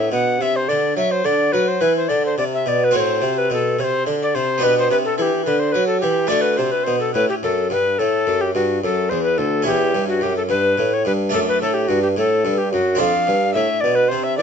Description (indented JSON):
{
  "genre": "classical, baroque-style sonata movement with continuo",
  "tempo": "72 BPM (dotted quarters)",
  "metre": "12/8",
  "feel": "straight",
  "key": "G major",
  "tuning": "A4 = 439 Hz",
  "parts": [
    { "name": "alto recorder", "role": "melody", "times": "0.0-14.4 s", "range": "F#4 to F#5", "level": "-19 LUFS", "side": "left 3 dB", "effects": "none" },
    { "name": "harpsichord", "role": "accompaniment", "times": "0.0-14.4 s", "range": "D2 to A4", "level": "-22 LUFS", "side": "equal", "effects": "none" },
    { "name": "dark bassoon", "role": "bass", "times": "0.0-14.4 s", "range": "D2 to F#3", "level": "-21 LUFS", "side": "right 2 dB", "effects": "none" }
  ],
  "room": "moderate studio reverb, RT60 0.7 s",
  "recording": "nothing above 7.9 kHz",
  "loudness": "-16 LUFS",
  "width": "side -7 dB against mid",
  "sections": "0.0-14.4 A section",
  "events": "none",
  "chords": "0.0 G (rootless); 2.9 F#dim/A; 4.6 G/B; 6.3 D; 9.7 C#dim/E; 11.3 D/F#; 13.0 Dm7/F",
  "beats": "0.40 1.25 2.09 | 2.94 3.79 4.63 5.47 | 6.30 7.14 7.98 8.82 | 9.66 10.49 11.32 12.15 | 12.99 13.83"
}